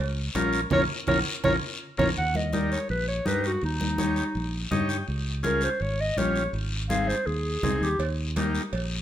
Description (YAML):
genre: latin, cumbia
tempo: 165 BPM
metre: 4/4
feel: straight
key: unclear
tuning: A4 = 440 Hz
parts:
  - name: fingered electric bass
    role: bass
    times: 0.0-9.0 s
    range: Ab1 to G2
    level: -29 LUFS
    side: right 1 dB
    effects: none
  - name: combo organ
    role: accompaniment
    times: 0.3-8.6 s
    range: Bb3 to G5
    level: -30 LUFS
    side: left 1 dB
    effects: spring reverb
  - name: cowbell and timbales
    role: percussion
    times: 0.3-2.1, 8.0-8.9 s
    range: none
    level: -34 LUFS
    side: right 4 dB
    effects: none
  - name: guiro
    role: percussion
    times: 0.3-9.0 s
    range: none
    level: -38 LUFS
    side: left 4 dB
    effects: none
  - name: congas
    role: percussion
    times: 0.4-8.5 s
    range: none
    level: -31 LUFS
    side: equal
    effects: none
  - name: clear clarinet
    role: melody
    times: 0.7-8.0 s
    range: Eb4 to Gb5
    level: -28 LUFS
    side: equal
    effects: none
room: moderate studio reverb, RT60 0.7 s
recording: minimal, uncompressed stereo recording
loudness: -24 LUFS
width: side -11 dB against mid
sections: 0.0-2.2 A section; 2.2-9.0 B section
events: band accent 0.7-2.2; drum fill 1.6-2.2; clarinet solo 2.2-9.0; transistor combo organ fill 4.5-5.1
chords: 0.0 Bbm; 2.2 Eb; 5.1 Db; 6.5 Ab; 8.0 Eb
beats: 0.35 | 0.72 1.08 1.45 1.81 | 2.17 2.54 2.90 3.27 | 3.63 4.00 4.36 4.72 | 5.09 5.45 5.82 6.18 | 6.54 6.91 7.27 7.64 | 8.00 8.37 8.73